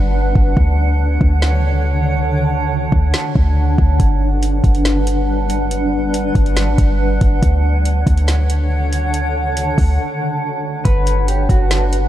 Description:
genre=hip hop, atmospheric cloud-rap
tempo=140 BPM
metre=4/4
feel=half-time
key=G lydian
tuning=A4 = 439 Hz
part: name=granular cloud pad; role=sustained chords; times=0.0-12.1 s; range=D3 to F#5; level=-19 LUFS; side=right 1 dB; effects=built-in reverb, sidechain pumping
part: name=warm 808-style bass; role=bass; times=0.0-12.1 s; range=G1 to D2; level=-16 LUFS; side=equal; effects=none
part: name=smooth R&B drum kit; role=drums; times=0.4-12.0 s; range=hi-hat, kick drum, snare drum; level=-17 LUFS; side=equal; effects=none
part: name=electric guitar through a small old amp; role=melody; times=10.8-12.1 s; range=F#4 to B4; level=-22 LUFS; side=equal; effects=wide subtle chorus, low-pass filter, tape echo
room=digital ambience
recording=none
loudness=-13 LUFS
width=side -13 dB against mid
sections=0.0-10.9 A section; 10.9-12.1 B section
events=break 0.0-4.0, 10.0-10.9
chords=0.0 Gmaj7; 0.6 Dmaj7; 4.0 Gmaj7; 7.4 Dmaj7; 10.9 Gmaj7

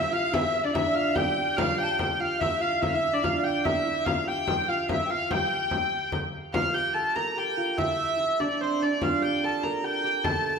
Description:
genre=medieval dance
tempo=145 BPM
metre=3/4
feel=straight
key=G dorian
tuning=A4 = 437 Hz
part: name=rich hurdy-gurdy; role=melody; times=0.0-10.6 s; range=C5 to Bb5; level=-27 LUFS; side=right 1 dB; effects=tape echo
part: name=bright reedy alto recorder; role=second line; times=0.0-6.1 s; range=D5 to A5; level=-30 LUFS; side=left 5 dB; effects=none
part: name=concert harp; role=second line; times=0.0-10.6 s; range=C4 to Bb4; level=-30 LUFS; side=right 3 dB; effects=none
part: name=frame drum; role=percussion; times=0.1-10.4 s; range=none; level=-32 LUFS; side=left 2 dB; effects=none
room=wet stone room reverb, RT60 1.2 s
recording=band playing live in one room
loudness=-24 LUFS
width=side -6 dB against mid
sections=0.0-6.5 A section; 6.5-10.6 B section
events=none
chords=none

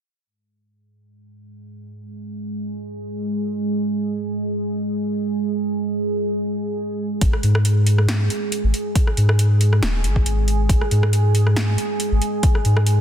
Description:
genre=deep dubstep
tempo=138 BPM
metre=4/4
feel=swing 55% on 16ths, half-time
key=unclear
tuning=A4 = 441 Hz
part: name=deep dark ambient pad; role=sustained chords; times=2.0-13.0 s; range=G#3 to G#4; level=-24 LUFS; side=right 2 dB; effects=chorus, built-in reverb
part: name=soft dub sub bass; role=bass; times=7.2-13.0 s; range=D#1 to G#2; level=-16 LUFS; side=equal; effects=none
part: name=deep house drum kit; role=drums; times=7.2-13.0 s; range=hi-hat, rim click, snare drum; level=-27 LUFS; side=equal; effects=overdrive, low-pass filter on hats, studio reverb, low-pass filter on snare
part: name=electronic kick drum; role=drums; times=7.2-12.5 s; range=none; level=-18 LUFS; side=equal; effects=overdrive, studio reverb
room=light reverb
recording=dense, heavily limited modern master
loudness=-18 LUFS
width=side -9 dB against mid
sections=0.3-7.2 A section; 7.2-13.0 B section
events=filter sweep on ambient pad 0.3-7.2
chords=0.3 N.C.; 7.2 G#5

